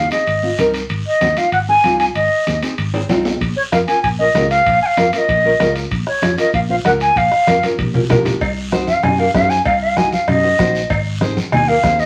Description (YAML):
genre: latin, cumbia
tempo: 192 BPM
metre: 4/4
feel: straight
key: Bb minor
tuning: A4 = 440 Hz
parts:
  - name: wooden flute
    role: melody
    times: 0.0-12.1 s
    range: Db5 to Ab5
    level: -17 LUFS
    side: equal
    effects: none
  - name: fingered electric bass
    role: bass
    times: 0.0-12.1 s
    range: Ab1 to Gb2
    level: -24 LUFS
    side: equal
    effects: none
  - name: nylon-string guitar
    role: accompaniment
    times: 0.1-12.1 s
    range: C4 to Eb5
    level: -23 LUFS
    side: equal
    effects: none
  - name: guiro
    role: percussion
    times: 0.1-12.1 s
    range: none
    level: -33 LUFS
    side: equal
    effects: none
  - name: timbales and cowbell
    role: percussion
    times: 0.1-11.7 s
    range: none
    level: -28 LUFS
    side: equal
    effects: none
  - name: congas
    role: percussion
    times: 0.3-12.0 s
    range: none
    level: -24 LUFS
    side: equal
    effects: none
  - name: bombo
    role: percussion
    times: 3.4-12.0 s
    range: none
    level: -27 LUFS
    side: equal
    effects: none
room: moderate studio ambience, RT60 0.5 s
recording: vinyl crackle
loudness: -16 LUFS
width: mono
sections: 0.0-8.4 A section; 8.4-12.1 B section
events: nylon-string guitar fill 2.8-3.4; drum fill 2.9-3.4, 7.5-8.4; flute solo 8.4-12.1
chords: 0.0 Ab; 3.4 Bbm; 8.4 Cdim; 10.9 Ab